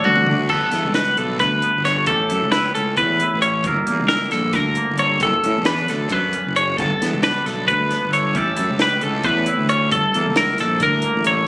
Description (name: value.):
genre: math rock and midwest emo.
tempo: 267 BPM (eighths).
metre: 7/8.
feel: straight.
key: unclear.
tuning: A4 = 440 Hz.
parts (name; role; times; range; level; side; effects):
twangy electric guitar; accompaniment; 0.0-11.5 s; D2 to B4; -25 LUFS; right 2 dB; none.
twelve-string electric guitar; arpeggios; 0.0-11.5 s; F#4 to C#5; -18 LUFS; left 1 dB; none.
compact cocktail drum kit; drums; 0.0-11.4 s; crash cymbal, hi-hat, kick drum, snare drum, toms; -26 LUFS; equal; none.
fuzz fingered electric bass; bass; 0.1-11.5 s; F#1 to A2; -22 LUFS; equal; overdrive.
room: light reverb.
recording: recorded on a phone in the room, club reverb, compression.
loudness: -16 LUFS.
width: side -22 dB against mid.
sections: 0.5-11.5 A section.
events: drum fill 0.0-0.5.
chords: 0.0 D; 0.5 Gmaj7; 2.1 A9; 3.7 Gm6; 5.2 Bm9/F#; 6.8 G; 8.4 A9; 9.9 Gm6.